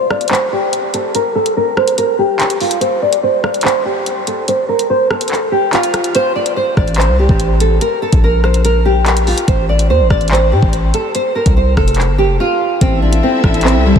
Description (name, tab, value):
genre	hip hop, drill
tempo	144 BPM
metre	4/4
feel	half-time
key	A phrygian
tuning	A4 = 440 Hz
part	nylon-string guitar	melody	0.0-14.0 s	G3 to D5	-14 LUFS	equal	wide subtle chorus, low-pass filter, tape echo
part	drill drum kit	drums	0.1-14.0 s	handclaps, hi-hat, kick drum, rim click	-18 LUFS	equal	none
part	distorted 808-style bass	bass	6.8-14.0 s	F1 to A2	-13 LUFS	equal	distortion
part	dark symphonic string section	sustained chords	12.8-14.0 s	C4 to E5	-20 LUFS	left 2 dB	none
room	moderate huge ambient reverb, RT60 5.1 s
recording	dreamy mix soaked in reverb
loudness	-11 LUFS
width	side -7 dB against mid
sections	0.0-12.8 A section; 12.8-14.0 B section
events	break 0.0-6.1, 12.4-12.8; filter sweep on nylon-string guitar 0.0-6.1; kick muted 6.1-6.6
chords	0.0 N.C.; 6.1 Am; 7.8 Gm/Bb; 9.5 A5; 11.1 F; 12.8 Am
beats	0.31 0.73 | 1.15 1.56 1.98 2.40 | 2.81 3.23 3.65 4.06 | 4.48 4.90 5.31 5.73 | 6.15 6.56 6.98 7.40 | 7.81 8.23 8.65 9.06 | 9.48 9.90 10.31 10.73 | 11.15 11.56 11.98 12.40 | 12.81 13.23 13.65